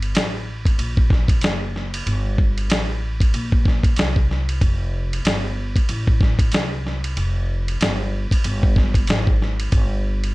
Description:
hip hop, jazz-hop; 94 BPM; 4/4; swing 59% on 16ths; F major; A4 = 440 Hz
upright bass; bass; 0.0-10.3 s; F1 to C2; -23 LUFS; equal
dusty soul sampler-style drum kit; drums; 0.0-10.3 s; hi-hat, kick drum, ride cymbal, snare drum; -19 LUFS; equal
little or no reverb; -18 LUFS; side -21 dB against mid
0.0-10.3 A section

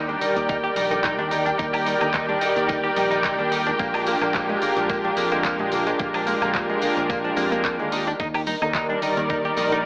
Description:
nu-disco, nu disco; 109 BPM; 4/4; swing 54% on 16ths; A4 = 441 Hz
warm analog pad; accompaniment; 0.0-9.9 s; Eb3 to D5; -24 LUFS; equal; chorus, sidechain pumping, tape echo
rich studio string section; sustained chords; 0.0-9.9 s; Eb3 to G5; -26 LUFS; equal; sidechain pumping
direct-recorded clean electric guitar; riff; 0.0-9.8 s; Bb2 to G4; -27 LUFS; equal; analog chorus
fingered electric bass; bass; 0.0-9.9 s; Bb1 to F2; -33 LUFS; equal
analog pluck; arpeggios; 0.1-9.8 s; D3 to Eb4; -34 LUFS; equal
house drum kit; drums; 0.1-9.8 s; cabasa, handclaps, hi-hat, woodblock; -29 LUFS; equal
tambourine; percussion; 0.2-9.8 s; -41 LUFS; equal
electronic kick drum; drums; 0.5-9.4 s; -32 LUFS; equal
moderate plate reverb, RT60 1.4 s; AM radio sound; -20 LUFS; side -30 dB against mid
0.0-9.9 A section
0.0 Bb7; 7.9 Ebmaj7

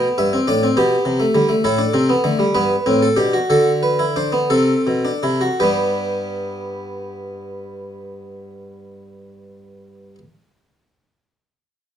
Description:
classical, baroque-style 3-part fugue for harpsichord; 52-69 BPM (dotted quarters); 6/8; straight; G major; A4 = 442 Hz
harpsichord; solo; 0.0-10.2 s; G2 to E5; -16 LUFS; equal
moderate stone room reverb, RT60 1.1 s; dark, warm production; -15 LUFS; side -9 dB against mid
0.0-5.6 A section; 5.6-10.2 B section
slowing down 0.8-5.6
0.0 G; 0.8 G/B; 1.6 D5/A; 2.5 G; 3.5 D7; 5.6 G

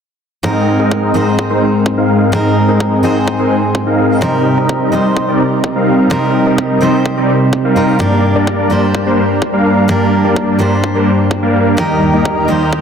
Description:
EDM, festival progressive house; 127 BPM; 4/4; straight; A4 = 440 Hz
fingerpicked steel-string acoustic guitar; accompaniment; 0.4-12.8 s; G2 to C5; -15 LUFS; right 1 dB; sidechain pumping, tape echo
lush unison pad; sustained chords; 0.4-12.8 s; Eb2 to Bb4; -17 LUFS; left 1 dB; chorus, sidechain pumping
supersaw chords; riff; 0.4-12.6 s; G3 to F5; -14 LUFS; equal; sidechain pumping, low-pass filter, tape echo
electronic kick drum; drums; 0.4-12.8 s; -21 LUFS; equal; high-pass filter on kick
moderate lush hall reverb, RT60 2.0 s, digital ambience; dense, heavily limited modern master; -10 LUFS; side -7 dB against mid
0.4-12.8 A section
filter sweep on analog synth pad 0.4-12.8
0.4 Abadd9; 4.2 Cm7; 8.0 Gm; 11.8 Eb

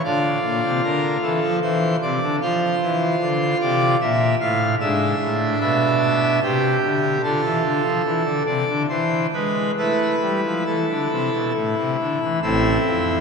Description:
classical, chorale-style piece for pipe organ; 67-77 BPM; 3/4; rubato; A minor; A4 = 439 Hz
pipe organ, full organ; solo; 0.0-13.2 s; A1 to F5; -18 LUFS; equal
wet cathedral reverb, RT60 5.5 s; -18 LUFS; side -5 dB against mid
0.0-12.4 A section
0.0 Dm; 1.6 C/E; 2.4 F5; 4.0 Bb5; 4.8 E7/G#; 6.4 Csus2; 7.2 Dm; 8.0 Am; 8.9 E; 9.8 Am

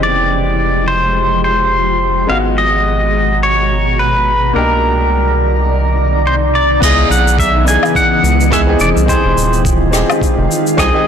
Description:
sunset chillout; 106 BPM; 4/4; swing 57% on 16ths; A4 = 439 Hz
pedal steel guitar; melody; 0.0-11.1 s; Bb4 to Ab5; -15 LUFS; equal; tape echo
clear grand piano; accompaniment; 0.0-11.1 s; Ab3 to Ab4; -20 LUFS; moving between left 5 dB and right 3 dB; auto-pan, tape echo
shimmering ambient pad; sustained chords; 0.0-11.1 s; Cb3 to Bb5; -17 LUFS; equal; chorus, built-in reverb
round analog bass; bass; 0.0-10.9 s; Eb1 to Db2; -16 LUFS; equal
electronic kick drum; drums; 6.8-10.9 s; -17 LUFS; equal
soft brush drum kit; drums; 6.8-10.9 s; crash cymbal, rim click, shaker, woodblock; -20 LUFS; left 1 dB; soft clipping on snare
light reverb, small room ambience; blown-out, overdriven recording, overdrive; -10 LUFS; side -8 dB against mid
0.0-6.8 A section; 6.8-11.1 B section
filter sweep on ambient pad 0.0-6.8
0.0 Fm9; 2.3 Abm9; 4.6 Cm9; 6.8 Dbm9; 8.8 Fm9

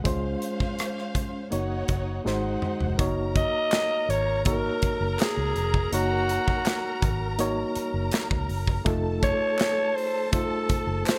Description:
lush 1970s-style soul; 82 BPM; 4/4; straight; A4 = 443 Hz
warm studio string section; second line; 0.0-11.2 s; Db4 to Bb5; -37 LUFS; equal
reed electric piano; accompaniment; 0.0-11.2 s; Ab3 to Db5; -33 LUFS; equal; fast tremolo
vintage muted fingered electric bass; bass; 0.1-11.0 s; F1 to Db2; -32 LUFS; equal
modern studio drum kit; drums; 0.1-11.2 s; hi-hat, kick drum, rim click, snare drum, toms; -30 LUFS; equal
growling alto saxophone; melody; 3.4-11.2 s; Gb4 to Eb5; -29 LUFS; equal
group handclap; percussion; 3.7-11.2 s; -38 LUFS; equal
light reverb, small room ambience; -26 LUFS; mono
0.0-3.0 A section; 3.0-11.2 B section
drum fill 2.3-3.0
0.0 Dbmaj7; 1.5 Gb6; 2.3 Ab7; 3.0 Gb6; 8.9 F7

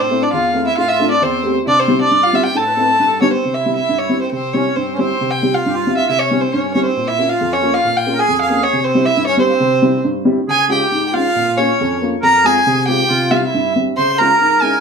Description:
klezmer; 136 BPM; 2/4; straight; A minor, C phrygian dominant from 3.4 s; A4 = 440 Hz
warm violin; melody; 0.0-14.8 s; C5 to C6; -16 LUFS; right 1 dB
accordion; second line; 0.0-14.8 s; Bb3 to C5; -20 LUFS; right 2 dB
dark upright piano; accompaniment; 0.0-14.7 s; E2 to Ab4; -18 LUFS; left 1 dB
wet studio reverb, RT60 0.7 s; band playing live in one room; -13 LUFS; side -6 dB against mid
0.0-3.4 A section; 3.4-10.5 B section; 10.5-14.8 C section
0.0 Am; 1.7 C; 2.5 Am; 3.0 G; 3.4 C; 7.0 Bbm; 8.7 C; 10.5 Db; 11.4 Bbm; 12.2 Fm; 13.1 C; 14.0 Db5

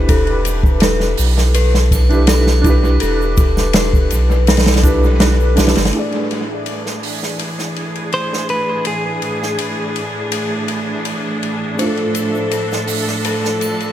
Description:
trip hop; 82 BPM; 4/4; straight; A4 = 439 Hz
felt-muted upright piano; accompaniment; 0.0-13.9 s; A3 to D5; -21 LUFS; right 2 dB; tremolo, low-pass filter, dub echo
dark detuned synth bell; arpeggios; 0.0-6.0, 11.8-13.9 s; A4 to C5; -23 LUFS; left 4 dB; chorus, dub echo
warm sub bass; bass; 0.0-5.9 s; E1 to B1; -15 LUFS; equal
open jazz drum kit; drums; 0.1-13.9 s; hi-hat, kick drum, ride cymbal, snare drum; -18 LUFS; equal; high-pass filter on kick, high-pass filter on cymbals, high-pass filter on hats, high-pass filter on snare, high-pass filter on room, dub echo
egg shaker and triangle; percussion; 0.1-5.9, 11.8-13.9 s; -30 LUFS; right 3 dB; dub echo
clear symphonic string section; sustained chords; 5.9-13.9 s; A2 to A4; -21 LUFS; right 1 dB; low-pass filter
clean electric guitar; melody; 8.1-11.4 s; G#4 to C5; -22 LUFS; equal; vintage 12-bit sampler grit, dub echo
light reverb, small room ambience; echo-heavy mix; -14 LUFS; side -12 dB against mid
0.0-5.9 A section; 5.9-13.9 B section
0.1 Em7; 5.9 E7/A; 11.8 Dm/A

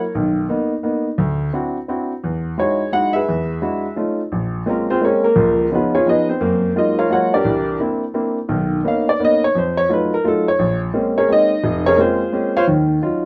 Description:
jazz; 172 BPM; 3/4; swing 63% on 8ths; Bb minor from 4.3 s; A4 = 436 Hz
warm baby grand piano; solo; 0.0-13.3 s; F1 to F#5; -18 LUFS; equal
moderate club reverb, RT60 0.5 s; -18 LUFS; mono
0.0-4.3 A section; 4.3-12.7 B section
grand piano solo 4.3-13.3
0.1 Bmaj7; 1.2 D9; 2.2 Emaj9; 3.3 E9; 4.0 F7b13; 4.3 Bbm9; 5.4 Db9; 6.4 Gbmaj9; 7.4 C9; 8.5 Bmaj9; 9.5 F7b9; 10.6 Bbm9; 12.7 Ebm9

